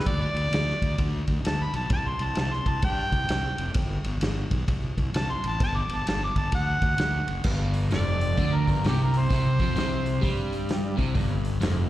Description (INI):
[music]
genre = blues rock power trio and southern rock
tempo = 130 BPM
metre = 4/4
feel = swing 64% on 8ths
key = G mixolydian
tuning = A4 = 441 Hz
[part]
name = mellow harmonica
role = melody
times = 0.0-10.5 s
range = G4 to D6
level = -29 LUFS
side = equal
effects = overdrive, slapback echo
[part]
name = vintage drum kit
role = drums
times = 0.0-11.8 s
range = crash cymbal, hi-hat, kick drum, ride cymbal, snare drum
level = -28 LUFS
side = equal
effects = none
[part]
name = fuzz fingered electric bass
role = bass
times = 0.1-11.9 s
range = F1 to G2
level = -28 LUFS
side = equal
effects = overdrive
[part]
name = crunchy overdriven guitar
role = riff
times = 7.4-11.9 s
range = F2 to G3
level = -26 LUFS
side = equal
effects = none
[sound]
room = small room ambience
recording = live gig heard through the venue's PA, recital hall reverb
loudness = -23 LUFS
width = side -14 dB against mid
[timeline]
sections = 0.0-7.4 A section; 7.4-11.9 B section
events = harmonica solo 0.0-7.4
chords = 0.1 N.C.; 1.9 C5; 3.7 G; 4.7 Am; 5.6 Gsus2; 6.5 D; 7.4 G5; 9.3 C5; 11.2 G5